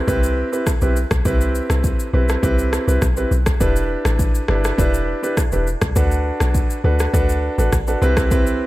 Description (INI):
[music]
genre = afrobeats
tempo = 102 BPM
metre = 4/4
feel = straight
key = unclear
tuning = A4 = 442 Hz
[part]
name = warm concert grand piano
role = accompaniment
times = 0.0-8.7 s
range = C4 to B4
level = -21 LUFS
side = right 1 dB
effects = none
[part]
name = deep log drum bass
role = bass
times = 0.1-8.6 s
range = E1 to D2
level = -19 LUFS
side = equal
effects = none
[part]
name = afro-pop drum kit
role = drums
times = 0.1-8.6 s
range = kick drum, rim click, shaker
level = -20 LUFS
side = equal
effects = none
[sound]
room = light reverb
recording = none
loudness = -16 LUFS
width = side -17 dB against mid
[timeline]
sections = 0.0-8.7 A section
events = none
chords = 0.0 Cmaj7; 3.6 Em7; 6.0 D6; 8.0 Cmaj7